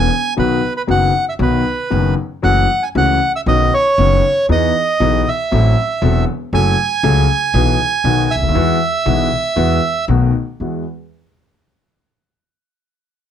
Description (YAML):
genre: tango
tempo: 118 BPM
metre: 4/4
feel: rubato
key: E major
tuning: A4 = 440 Hz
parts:
  - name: bandoneon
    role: melody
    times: 0.0-10.1 s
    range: B4 to G#5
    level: -16 LUFS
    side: right 3 dB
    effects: none
  - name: warm grand piano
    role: accompaniment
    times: 0.0-10.8 s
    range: E1 to A4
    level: -17 LUFS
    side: left 4 dB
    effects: none
  - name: upright bass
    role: bass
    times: 0.0-10.8 s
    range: E1 to E2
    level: -17 LUFS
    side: right 1 dB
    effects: none
room: light reverb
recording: none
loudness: -13 LUFS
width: side -9 dB against mid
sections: 0.0-10.6 A section; 10.6-12.6 B section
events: none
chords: 0.4 B; 2.4 F#m7; 3.5 Badd9; 4.5 Emaj7; 5.5 Am6; 6.5 F#m; 7.5 E/B; 8.0 B; 8.5 Eadd9; 10.1 B7; 10.6 Eadd9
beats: | 0.37 0.88 1.39 1.91 | 2.43 2.95 3.46 3.98 | 4.49 5.00 5.51 6.02 | 6.53 7.03 7.54 8.04 | 8.55 9.06 9.57 10.09 | 10.61